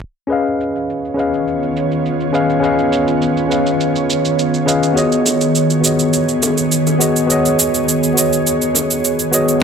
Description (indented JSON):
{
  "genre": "sunset chillout",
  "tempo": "103 BPM",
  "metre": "4/4",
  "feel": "straight",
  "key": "B lydian",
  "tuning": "A4 = 441 Hz",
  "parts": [
    { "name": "tine electric piano", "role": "accompaniment", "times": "0.3-9.6 s", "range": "B3 to E#5", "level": "-16 LUFS", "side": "left 1 dB", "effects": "auto-pan, low-pass filter, tape echo" },
    { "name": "ethereal airy pad", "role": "sustained chords", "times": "0.9-9.6 s", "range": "D#3 to C#5", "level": "-18 LUFS", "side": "right 1 dB", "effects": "ensemble chorus, built-in reverb" },
    { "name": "cabasa", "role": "drums", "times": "0.3-9.6 s", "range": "none", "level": "-19 LUFS", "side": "right 4 dB", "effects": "low-pass filter on perc, studio reverb" },
    { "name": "bongos", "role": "percussion", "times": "5.3-8.9 s", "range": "none", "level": "-26 LUFS", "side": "left 5 dB", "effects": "none" }
  ],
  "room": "moderate plate reverb, RT60 1.8 s, digital ambience",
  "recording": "dark, warm production",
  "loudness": "-13 LUFS",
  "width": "side -6 dB against mid",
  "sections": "0.3-9.6 A section",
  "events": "filter sweep on tine electric piano 0.3-9.6",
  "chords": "0.3 C#9; 5.0 B69"
}